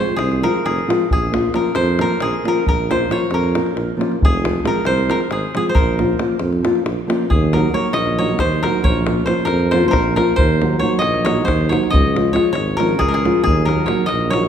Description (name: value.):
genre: balkan folk, Balkan wedding band.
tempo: 272 BPM (eighths).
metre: 7/8.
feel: straight.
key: Bb minor.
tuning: A4 = 440 Hz.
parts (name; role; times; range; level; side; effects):
koto; melody; 0.0-14.5 s; Ab4 to Eb5; -20 LUFS; equal; none.
nylon-string guitar; accompaniment; 0.0-14.5 s; F3 to Gb4; -20 LUFS; left 1 dB; none.
davul; percussion; 0.1-14.5 s; none; -22 LUFS; equal; none.
mellow tuba; bass; 0.2-14.5 s; F1 to F2; -20 LUFS; right 1 dB; none.
room: wet recital hall reverb, RT60 1.6 s.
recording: minimal, uncompressed stereo recording.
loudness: -15 LUFS.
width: side -8 dB against mid.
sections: 0.0-7.3 A section; 7.3-14.5 B section.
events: none.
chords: 0.0 Fm; 1.1 Bbm; 4.2 Fm; 5.8 Bbm; 7.3 Ebm; 8.8 Bbm; 10.4 Ebm; 11.9 Db; 13.5 Ebm.